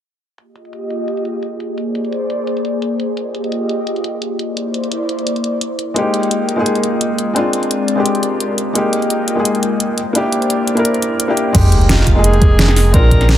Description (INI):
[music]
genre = liquid drum and bass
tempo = 172 BPM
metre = 4/4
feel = swing 54% on 16ths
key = F dorian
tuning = A4 = 440 Hz
[part]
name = airy breathy pad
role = sustained chords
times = 0.4-13.4 s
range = Ab3 to D6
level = -20 LUFS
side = equal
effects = chorus, sidechain pumping
[part]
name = pop drum kit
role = drums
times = 0.4-13.4 s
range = crash cymbal, hi-hat, snare drum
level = -19 LUFS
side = equal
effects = overdrive, low-pass filter on hats, low-pass filter on cymbals, low-pass filter on snare, low-pass filter on room
[part]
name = felt-muted upright piano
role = accompaniment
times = 5.9-13.4 s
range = Ab3 to Bb4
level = -16 LUFS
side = left 1 dB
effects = dub echo
[part]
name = sub bass with octave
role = bass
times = 11.5-13.4 s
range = F1 to Bb1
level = -12 LUFS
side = equal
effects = none
[part]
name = electronic kick drum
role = drums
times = 11.5-13.2 s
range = none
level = -12 LUFS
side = equal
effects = overdrive
[part]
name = sub drop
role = sound effects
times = 11.5-12.9 s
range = none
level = -18 LUFS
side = equal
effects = none
[part]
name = clear alto saxophone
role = melody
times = 11.9-13.4 s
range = F4 to Bb4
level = -19 LUFS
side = right 1 dB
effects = dub echo
[sound]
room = light reverb, digital ambience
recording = none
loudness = -14 LUFS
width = side -11 dB against mid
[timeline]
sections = 0.4-11.5 A section; 11.5-13.4 B section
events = filter sweep on analog synth pad 0.4-11.5; drop 11.5-13.4; impact 11.5-12.9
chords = 0.4 Fm11; 1.8 Bb9; 3.2 Fm11; 4.4 C9; 6.0 Fm11; 7.4 Bb9; 8.8 Fm11; 10.0 C9; 11.5 Fm11